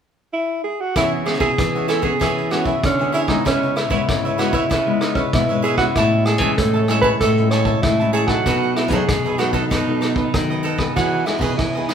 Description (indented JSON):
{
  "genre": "samba and choro",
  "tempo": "96 BPM",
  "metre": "4/4",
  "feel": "straight",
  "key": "E major",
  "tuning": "A4 = 439 Hz",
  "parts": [
    { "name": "breathy alto saxophone", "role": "melody", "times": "0.3-11.9 s", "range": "C#4 to C#5", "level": "-20 LUFS", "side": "right 1 dB", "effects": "none" },
    { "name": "cavaquinho", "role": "accompaniment", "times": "1.0-11.9 s", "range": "D#4 to A5", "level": "-25 LUFS", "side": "right 4 dB", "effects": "none" },
    { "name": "nylon-string guitar", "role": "accompaniment", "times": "1.0-11.9 s", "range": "F#2 to G#4", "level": "-25 LUFS", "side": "left 4 dB", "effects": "none" },
    { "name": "nylon-string guitar", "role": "bass", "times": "1.0-11.9 s", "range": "G#2 to F#3", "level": "-23 LUFS", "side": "equal", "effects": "none" },
    { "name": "vintage brush drum kit", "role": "drums", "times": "1.0-11.9 s", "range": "hi-hat, kick drum, ride cymbal, rim click", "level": "-23 LUFS", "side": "equal", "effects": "none" }
  ],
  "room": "moderate large studio reverb, RT60 1.3 s",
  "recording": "band playing live in one room",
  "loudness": "-16 LUFS",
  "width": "side -7 dB against mid",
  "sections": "1.0-11.0 A section",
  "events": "none",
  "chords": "0.0 N.C.; 1.0 E6; 3.5 C#m7; 6.0 Amaj7; 8.5 B7; 11.0 Emaj7",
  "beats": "0.34 | 0.96 1.59 2.21 2.84 | 3.46 4.09 4.71 5.34 | 5.96 6.59 7.21 7.84 | 8.46 9.09 9.71 10.34 | 10.96 11.59"
}